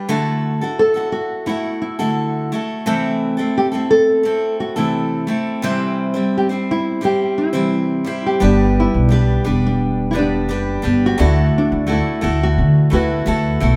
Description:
acoustic pop; 86 BPM; 4/4; straight; G major; A4 = 440 Hz
picked steel-string acoustic guitar; accompaniment; 0.0-13.8 s; C3 to C5; -22 LUFS; equal
nylon-string guitar; melody; 0.8-13.8 s; D4 to A4; -22 LUFS; equal
felt-muted upright piano; accompaniment; 8.4-13.8 s; A3 to D5; -27 LUFS; equal
upright bass; bass; 8.4-13.8 s; E1 to D3; -18 LUFS; equal
wet stone room reverb, RT60 1.1 s; band playing live in one room; -18 LUFS; mono
0.0-8.4 A section; 8.4-13.8 B section
0.1 Dadd9; 2.9 Am/C; 5.6 C; 8.4 G; 11.2 Dadd9
| 0.09 0.78 1.48 2.17 | 2.86 3.56 4.25 4.95 | 5.64 6.33 7.03 7.72 | 8.41 9.11 9.80 10.49 | 11.19 11.88 12.57 13.27

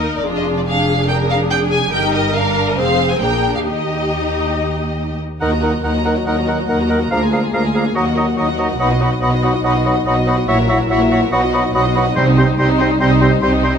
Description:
quick classical-period movement for symphony orchestra; 142 BPM; 4/4; straight; Eb major, Eb minor from 5.4 s; A4 = 440 Hz
warm studio violin section; melody; 0.0-13.8 s; C5 to Bb5; -23 LUFS; left 1 dB
warm symphonic violin section; second line; 0.0-13.8 s; Eb4 to Eb5; -24 LUFS; left 2 dB
dark studio viola section; accompaniment; 0.0-13.8 s; C4 to Bb4; -21 LUFS; left 2 dB
warm studio cello section; bass; 0.0-13.8 s; D2 to C3; -21 LUFS; right 2 dB
warm studio double bass section; bass; 0.0-13.8 s; F1 to Eb2; -22 LUFS; right 2 dB
clear clarinet; second line; 5.4-13.7 s; Eb4 to Bb4; -26 LUFS; left 1 dB
clear oboe; second line; 5.4-13.7 s; C5 to Gb5; -23 LUFS; right 2 dB
silver concert flute; second line; 5.4-13.7 s; Bb5 to Db6; -26 LUFS; left 2 dB
mellow bassoon; accompaniment; 5.4-13.7 s; Eb3 to G3; -22 LUFS; right 1 dB
mellow French horn section; sustained chords; 5.4-13.7 s; Gb3 to Fb4; -22 LUFS; left 4 dB
timpani; percussion; 12.2-12.8 s; C3; -25 LUFS; equal
moderate concert hall reverb, RT60 1.8 s; -14 LUFS; side -7 dB against mid
0.0-5.4 A section; 5.4-13.8 B section
0.2 Ddim/F; 1.9 Eb/G; 2.8 Fm; 3.2 Bb7; 3.6 Eb; 5.4 Ebm; 7.1 Bb7/D; 8.0 Ebm; 8.8 B; 10.5 Gb7/Bb; 11.3 B; 12.2 Cm
| 0.25 0.67 1.09 1.50 | 1.92 2.35 2.77 3.21 | 3.64 4.09 4.53 4.97 | 5.41 5.83 6.26 6.69 | 7.11 7.54 7.96 8.38 | 8.80 9.22 9.64 10.06 | 10.48 10.91 11.33 11.74 | 12.16 12.59 13.01 13.43

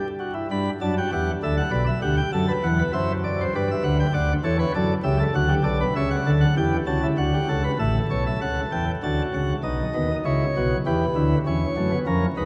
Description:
classical, baroque-style 3-part fugue for pipe organ; 98 BPM; 3/4; straight; G major; A4 = 440 Hz
chamber organ, principal chorus; solo; 0.0-12.5 s; A1 to B5; -23 LUFS; equal
wet cathedral reverb, RT60 5.9 s; dark, warm production, vinyl crackle; -23 LUFS; mono
0.5-7.8 A section; 7.8-12.5 B section
0.5 G; 1.7 G/B; 2.3 D7; 3.5 G; 4.1 D; 6.0 A7/C#; 7.2 D; 7.8 A7; 9.0 D; 9.6 B; 10.9 Em; 11.5 A69/E
| 0.49 1.10 1.71 | 2.32 2.93 3.53 | 4.14 4.74 5.35 | 5.96 6.57 7.18 | 7.79 8.41 9.02 | 9.63 10.24 10.85 | 11.46 12.07

